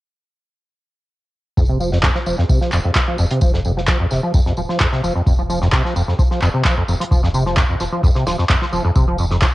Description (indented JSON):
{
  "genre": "acid house",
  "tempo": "130 BPM",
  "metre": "4/4",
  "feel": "straight",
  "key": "unclear",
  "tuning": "A4 = 440 Hz",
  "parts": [
    { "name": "acid bass, saw", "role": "riff", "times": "1.6-9.5 s", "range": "F2 to F3", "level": "-18 LUFS", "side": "equal", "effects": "ensemble chorus, vintage 12-bit sampler grit, cassette tape, analog delay" },
    { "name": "round analog bass", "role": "bass", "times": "1.6-9.5 s", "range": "Eb1 to F1", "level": "-25 LUFS", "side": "equal", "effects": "sidechain pumping" },
    { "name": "electronic kick drum", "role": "drums", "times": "1.6-9.5 s", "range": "none", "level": "-16 LUFS", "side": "equal", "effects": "cassette tape" },
    { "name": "warm soul drum kit", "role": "drums", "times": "1.6-9.5 s", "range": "hi-hat, snare drum, tambourine", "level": "-30 LUFS", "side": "equal", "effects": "high-pass filter on hats, cassette tape, high-pass filter on snare, high-pass filter on perc, high-pass filter on room" },
    { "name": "electronic handclaps", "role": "drums", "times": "2.0-9.5 s", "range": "none", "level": "-21 LUFS", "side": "equal", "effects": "cassette tape" }
  ],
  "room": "light reverb, studio reverb",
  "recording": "home recording on cassette, nothing above 10.7 kHz",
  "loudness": "-15 LUFS",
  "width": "side -18 dB against mid",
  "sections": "1.6-9.5 A section",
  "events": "filter sweep on acid bass 1.6-9.5; filter sweep on analog synth bass 1.6-9.5",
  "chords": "none",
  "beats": "| 1.57 2.04 2.50 2.96 | 3.42 3.88 4.34 4.80 | 5.26 5.73 6.19 6.65 | 7.11 7.57 8.04 8.50 | 8.96 9.42"
}